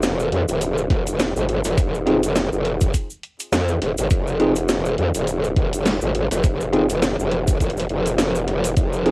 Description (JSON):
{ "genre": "glitch hop", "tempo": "103 BPM", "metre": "4/4", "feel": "swing 57% on 16ths", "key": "F minor", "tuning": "A4 = 439 Hz", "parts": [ { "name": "growl bass", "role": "bass", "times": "0.0-9.1 s", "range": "Eb1 to F2", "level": "-20 LUFS", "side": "equal", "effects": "chorus" }, { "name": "drum and bass drum kit", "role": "drums", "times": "0.0-9.1 s", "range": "hi-hat, snare drum", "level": "-23 LUFS", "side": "equal", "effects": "studio reverb, cassette tape" }, { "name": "cabasa", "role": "percussion", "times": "0.0-9.0 s", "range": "none", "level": "-33 LUFS", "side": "right 1 dB", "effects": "none" }, { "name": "electronic kick drum", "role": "drums", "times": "0.9-8.9 s", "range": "none", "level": "-18 LUFS", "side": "equal", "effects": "studio reverb, cassette tape" }, { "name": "bell-like tine electric piano", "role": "stabs", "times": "2.1-9.1 s", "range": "C4 to Ab4", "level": "-21 LUFS", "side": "equal", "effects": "medium stereo tremolo, vintage 12-bit sampler grit, sidechain pumping, cassette tape, tape echo" } ], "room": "light reverb", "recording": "home recording on cassette, vinyl crackle", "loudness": "-18 LUFS", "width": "side -28 dB against mid", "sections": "0.0-9.1 A section", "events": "none", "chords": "0.0 F7(no3)", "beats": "0.03 0.61 1.20 | 1.78 2.36 2.94 3.53 | 4.11 4.69 5.27 5.86 | 6.44 7.02 7.60 8.19 | 8.77" }